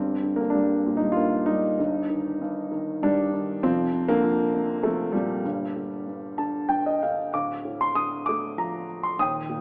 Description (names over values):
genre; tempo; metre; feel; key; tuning
classical, lyrical solo piano; 97 BPM; 3/4; rubato; G minor; A4 = 439 Hz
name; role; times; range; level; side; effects
dark concert grand piano; solo; 0.0-9.6 s; D1 to Eb6; -26 LUFS; equal; none
room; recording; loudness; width
moderate recital hall reverb, RT60 1.5 s; recorded in a church or concert hall, AM radio sound; -26 LUFS; mono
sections
0.0-7.3 A section; 7.3-9.6 B section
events
grand piano fill 6.1-7.3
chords
0.0 Gm; 1.8 Ebmaj7/G; 3.6 Fsus4; 5.4 Gm; 7.3 Dm